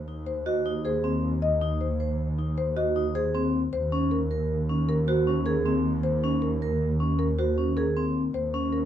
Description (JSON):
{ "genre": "classical, minimalist pattern music", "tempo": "156 BPM", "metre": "6/4", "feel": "straight", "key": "unclear", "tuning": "A4 = 440 Hz", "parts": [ { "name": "warm symphonic double bass section", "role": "bass", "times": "0.0-8.9 s", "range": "Eb2", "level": "-27 LUFS", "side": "right 1 dB", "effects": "none" }, { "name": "vibraphone with medium mallets", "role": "arpeggios", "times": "0.1-8.8 s", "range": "C4 to C5", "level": "-28 LUFS", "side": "right 1 dB", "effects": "none" }, { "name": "marimba with medium mallets", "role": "melody", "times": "0.3-8.9 s", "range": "Bb4 to Eb5", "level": "-31 LUFS", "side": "left 4 dB", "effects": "none" } ], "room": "light reverb", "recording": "dark, warm production", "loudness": "-24 LUFS", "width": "side -10 dB against mid", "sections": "0.0-8.9 A section", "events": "none", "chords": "0.0 Ab7/Eb; 3.7 Gb6/Eb (rootless); 8.3 Dbsus2/Eb" }